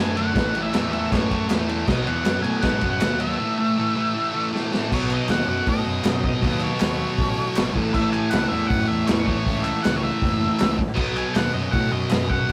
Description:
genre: garage rock duo or trio.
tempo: 158 BPM.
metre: 4/4.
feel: straight.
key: unclear.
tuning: A4 = 441 Hz.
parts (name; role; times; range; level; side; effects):
octave-fuzz lead guitar; melody; 0.0-12.5 s; C#5 to G#5; -30 LUFS; equal; distortion.
thick fuzz guitar; riff; 0.0-12.5 s; A2 to D4; -26 LUFS; equal; distortion.
fuzz picked electric bass; bass; 0.0-12.5 s; F#1 to A2; -30 LUFS; equal; overdrive.
vintage drum kit; drums; 0.2-12.5 s; crash cymbal, hi-hat, kick drum, ride cymbal, snare drum; -27 LUFS; equal; none.
group handclap; percussion; 0.7-12.2 s; none; -40 LUFS; equal; none.
room: moderate stone room reverb, RT60 1.1 s.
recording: rough rehearsal-room recording.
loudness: -22 LUFS.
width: mono.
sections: 0.0-4.9 A section; 4.9-12.5 B section.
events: drum fill 4.5-4.9.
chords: 0.3 A; 1.9 B; 3.4 A5; 4.9 B; 7.7 A; 11.0 B.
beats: | 0.35 0.73 1.11 1.49 | 1.87 2.25 2.63 3.01 | 3.39 3.77 4.14 4.52 | 4.90 5.28 5.66 6.04 | 6.42 6.80 7.18 7.56 | 7.94 8.32 8.70 9.07 | 9.45 9.83 10.21 10.59 | 10.97 11.35 11.73 12.11 | 12.49.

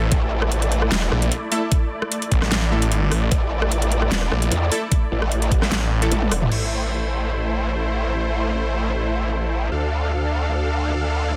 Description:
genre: heavy wobble dubstep.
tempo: 150 BPM.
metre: 4/4.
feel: half-time.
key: A minor.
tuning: A4 = 443 Hz.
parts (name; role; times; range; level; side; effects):
supersaw chords; sustained chords; 0.0-11.4 s; A3 to F5; -29 LUFS; equal; vintage 12-bit sampler grit, sidechain pumping, low-pass filter.
orchestra-hit-like synth stab; stabs; 0.0-6.3 s; A3 to A4; -31 LUFS; equal; built-in reverb, dub echo.
snarling distorted saw bass; bass; 0.0-6.1 s; A1 to Bb1; -23 LUFS; equal; distortion, overdrive.
growl bass; bass; 0.1-11.4 s; E1 to E2; -24 LUFS; equal; chorus, overdrive.
dubstep drum kit; drums; 0.1-6.6 s; crash cymbal, hi-hat, rim click, snare drum, toms; -27 LUFS; equal; small room ambience.
electronic kick drum; drums; 0.1-5.6 s; none; -21 LUFS; equal; small room ambience.
room: light reverb, digital ambience.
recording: dense, heavily limited modern master.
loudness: -21 LUFS.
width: mono.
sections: 0.0-6.5 A section; 6.5-11.4 B section.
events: drop 0.0-6.5; drum fill 6.1-6.5.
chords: 0.0 A5; 6.5 Am; 9.7 Dm.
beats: | 0.12 0.52 0.92 1.32 | 1.72 2.12 2.52 2.92 | 3.32 3.72 4.12 4.52 | 4.92 5.32 5.72 6.12 | 6.52 6.92 7.32 7.72 | 8.12 8.52 8.92 9.32 | 9.72 10.12 10.52 10.92 | 11.32.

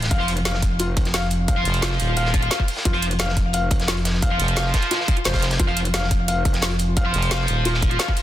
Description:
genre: dark technical drum and bass.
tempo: 175 BPM.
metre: 4/4.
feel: straight.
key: unclear.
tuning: A4 = 439 Hz.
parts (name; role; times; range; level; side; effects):
metallic wobble bass; bass; 0.0-7.1 s; F1; -24 LUFS; equal; chorus, overdrive.
crunchy breakbeat drum kit; drums; 0.0-8.2 s; hi-hat, snare drum; -31 LUFS; equal; high-pass filter on hats, high-pass filter on snare, high-pass filter on room.
drum and bass drum kit; drums; 0.0-8.2 s; hi-hat, snare drum; -26 LUFS; right 1 dB; none.
felt-muted upright piano; arpeggios; 0.1-8.1 s; F4 to F5; -28 LUFS; left 4 dB; sidechain pumping, ping-pong delay.
electronic kick drum; drums; 0.1-8.2 s; none; -21 LUFS; equal; none.
high-gain distorted guitar; stabs; 0.2-8.1 s; F4 to F5; -26 LUFS; right 1 dB; distortion, vintage 12-bit sampler grit, ping-pong delay.
growling FM bass; bass; 1.7-8.0 s; Eb1 to F1; -22 LUFS; equal; none.
room: light reverb, small room ambience.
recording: dense, heavily limited modern master.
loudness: -18 LUFS.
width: side -13 dB against mid.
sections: 0.0-8.2 A section.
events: none.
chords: 0.0 F5.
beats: | 0.11 0.45 0.80 1.14 | 1.48 1.82 2.17 2.51 | 2.85 3.20 3.54 3.88 | 4.22 4.57 4.91 5.25 | 5.60 5.94 6.28 6.62 | 6.97 7.31 7.65 8.00.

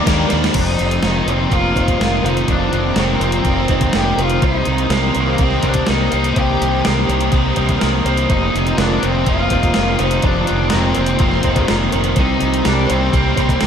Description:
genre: rock, shoegaze and dream pop.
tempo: 124 BPM.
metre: 4/4.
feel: straight.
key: unclear.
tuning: A4 = 440 Hz.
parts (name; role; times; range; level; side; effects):
octave-fuzz lead guitar; melody; 0.0-13.7 s; Bb3 to G4; -22 LUFS; left 2 dB; distortion, ping-pong delay.
airy breathy pad; sustained chords; 0.0-13.7 s; Eb3 to Eb6; -25 LUFS; right 1 dB; chorus.
electric guitar through a small old amp; arpeggios; 0.0-13.7 s; Bb4 to C5; -26 LUFS; left 3 dB; wide subtle chorus, ping-pong delay.
biting overdriven guitar; riff; 0.0-13.7 s; F2 to Eb4; -21 LUFS; right 9 dB; reverse reverb.
sludgy distorted guitar; riff; 0.0-0.5 s; Eb3 to Bb3; -24 LUFS; equal; overdrive.
thick fuzz guitar; riff; 0.0-13.7 s; F2 to G4; -22 LUFS; left 9 dB; distortion, analog chorus.
fuzz fingered electric bass; bass; 0.1-13.7 s; F1 to Eb2; -20 LUFS; equal; overdrive.
gated 80s digital drum machine; drums; 0.1-13.7 s; crash cymbal, hi-hat, kick drum, snare drum; -20 LUFS; equal; gated reverb, gated reverb snare, overdrive.
room: moderate lush hall reverb, RT60 1.9 s, digital ambience.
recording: dreamy mix soaked in reverb.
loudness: -14 LUFS.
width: side -8 dB against mid.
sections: 0.6-13.7 A section.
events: drum fill 0.3.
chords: 0.0 Ebmaj7; 0.6 F7sus4; 4.4 Cm7; 8.3 F7sus4; 12.2 Cm7.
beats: 0.07 | 0.55 1.03 1.52 2.00 | 2.49 2.97 3.46 3.94 | 4.43 4.91 5.40 5.88 | 6.37 6.86 7.34 7.83 | 8.31 8.79 9.28 9.76 | 10.25 10.73 11.21 11.69 | 12.18 12.66 13.14 13.62.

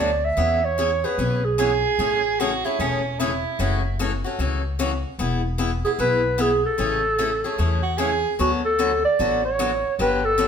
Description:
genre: acoustic string swing (jazz manouche).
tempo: 150 BPM.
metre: 4/4.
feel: swing 63% on 8ths.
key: A major.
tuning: A4 = 439 Hz.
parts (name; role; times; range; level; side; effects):
dark clarinet; melody; 0.0-1.8, 5.8-10.5 s; F#4 to E5; -21 LUFS; right 2 dB; none.
picked swing-style acoustic guitar; accompaniment; 0.0-10.5 s; C#3 to A4; -26 LUFS; left 4 dB; none.
upright bass; bass; 0.0-10.5 s; E1 to E2; -26 LUFS; left 1 dB; none.
bright soprano saxophone; second line; 1.6-4.0, 7.8-8.4 s; C#4 to G#4; -23 LUFS; right 5 dB; none.
room: wet stone room reverb, RT60 1.1 s.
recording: band playing live in one room.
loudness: -20 LUFS.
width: side -7 dB against mid.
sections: 0.0-8.4 A section; 8.4-10.5 B section.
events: none.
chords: 0.4 E6; 2.0 Amaj7; 3.6 F#m7; 5.2 E; 6.8 Amaj7; 8.4 D6.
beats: | 0.38 0.78 1.19 1.59 | 1.99 2.39 2.79 3.19 | 3.59 3.99 4.39 4.79 | 5.19 5.59 5.99 6.39 | 6.79 7.19 7.59 7.99 | 8.39 8.79 9.19 9.58 | 9.98 10.38.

